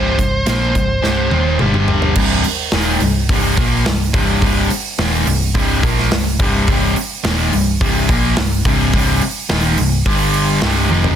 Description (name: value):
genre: hard rock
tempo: 106 BPM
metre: 4/4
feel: straight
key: unclear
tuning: A4 = 445 Hz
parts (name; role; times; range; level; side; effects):
- high-gain lead guitar; melody; 0.0-1.6 s; C5; -22 LUFS; right 2 dB; distortion, digital delay
- overdriven electric guitar; riff; 0.0-11.2 s; C2 to Bb3; -16 LUFS; equal; none
- hollow-body short-scale picked electric bass; bass; 0.0-11.2 s; C1 to Bb1; -19 LUFS; equal; none
- big rock drum kit; drums; 0.2-11.2 s; crash cymbal, hi-hat, kick drum, snare drum, toms; -18 LUFS; equal; none
room: light reverb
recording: dense, heavily limited modern master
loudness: -13 LUFS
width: side -9 dB against mid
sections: 0.0-2.2 A section; 2.2-11.2 B section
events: drum fill 1.0-2.2, 10.9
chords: 0.0 C5; 1.6 G5; 2.2 C5; 10.1 G5; 10.6 C5